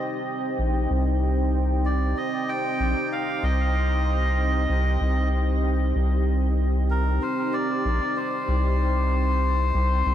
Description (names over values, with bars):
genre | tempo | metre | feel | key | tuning
ambient dub | 95 BPM | 4/4 | straight | C minor | A4 = 440 Hz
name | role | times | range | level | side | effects
deep dark ambient pad | sustained chords | 0.0-10.1 s | C4 to G5 | -28 LUFS | right 1 dB | chorus, built-in reverb
round analog bass | bass | 0.6-10.1 s | Bb1 to C2 | -22 LUFS | equal | none
melodica | melody | 1.9-10.1 s | Bb4 to G5 | -28 LUFS | equal | dub echo
room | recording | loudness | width
moderate huge ambient reverb, RT60 8.4 s | dreamy mix soaked in reverb | -21 LUFS | side -10 dB against mid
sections
0.0-10.1 A section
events
none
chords
0.0 Cm